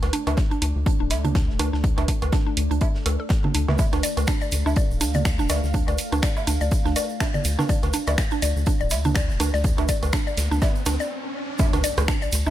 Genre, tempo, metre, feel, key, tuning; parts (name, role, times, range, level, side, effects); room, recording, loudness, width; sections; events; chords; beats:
minimal techno; 123 BPM; 4/4; swing 57% on 16ths; D minor; A4 = 440 Hz
rubbery square bass; bass; 0.0-12.5 s; D1 to D2; -24 LUFS; equal; sidechain pumping
big rock drum kit; drums; 0.0-12.5 s; hi-hat, snare drum; -39 LUFS; right 3 dB; sidechain pumping on hats, high-pass filter on hats, high-pass filter on snare, high-pass filter on room
punchy analog drum machine; drums; 0.0-12.4 s; finger snaps, hi-hat; -30 LUFS; right 2 dB
electronic woodblock, congas and rim click; percussion; 0.0-12.5 s; -29 LUFS; right 3 dB; ping-pong delay
deep dark ambient pad; texture; 0.0-11.1 s; A3 to D6; -36 LUFS; left 1 dB; chorus, built-in reverb, sidechain pumping
mallet-like synth pluck; riff; 0.1-12.5 s; D4 to D5; -28 LUFS; equal; chorus, vintage 12-bit sampler grit, sidechain pumping, ping-pong delay
electronic kick drum; drums; 0.4-12.2 s; -23 LUFS; equal
egg shaker; percussion; 3.8-12.5 s; -34 LUFS; right 4 dB
riser and impact; sound effects; 9.6-12.5 s; -33 LUFS; equal
little or no reverb; -20 LUFS; side -13 dB against mid
0.0-11.6 A section
fade-in on ambient pad 0.0-11.6; riser 9.6-11.6; stop 11.1-11.6; impact 11.6-12.5
0.0 D5
0.38 0.86 1.35 | 1.84 2.33 2.81 3.30 | 3.79 4.28 4.76 5.25 | 5.74 6.23 6.72 7.20 | 7.69 8.18 8.67 9.15 | 9.64 10.13 10.62 11.11 | 11.59 12.08